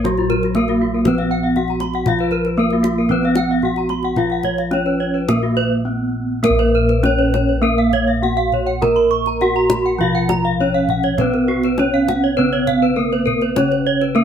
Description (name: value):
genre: Balinese gamelan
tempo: 101-119 BPM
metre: 4/4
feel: straight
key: Bb pelog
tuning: A4 = 439 Hz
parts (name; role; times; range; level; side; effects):
- gamelan-type bronze metallophone; melody; 0.0-14.2 s; Gb3 to Bb4; -19 LUFS; right 1 dB; none
- gamelan-type bronze metallophone; accompaniment; 0.0-14.2 s; Db3 to Cb4+35c; -24 LUFS; right 2 dB; none
- gamelan-type bronze metallophone; arpeggios; 0.0-14.2 s; F4 to Cb6+35c; -22 LUFS; left 6 dB; none
- gamelan-type bossed gongs; bass; 0.0-14.2 s; Bb1 to Cb5+35c; -22 LUFS; equal; none
- kendang; percussion; 0.0-14.2 s; none; -25 LUFS; left 3 dB; none
- gamelan-type bronze metallophone; arpeggios; 0.3-14.0 s; F4 to Db6; -22 LUFS; right 5 dB; none
room: light reverb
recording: band playing live in one room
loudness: -15 LUFS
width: side -8 dB against mid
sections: 0.0-6.4 A section; 6.4-14.2 B section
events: none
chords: none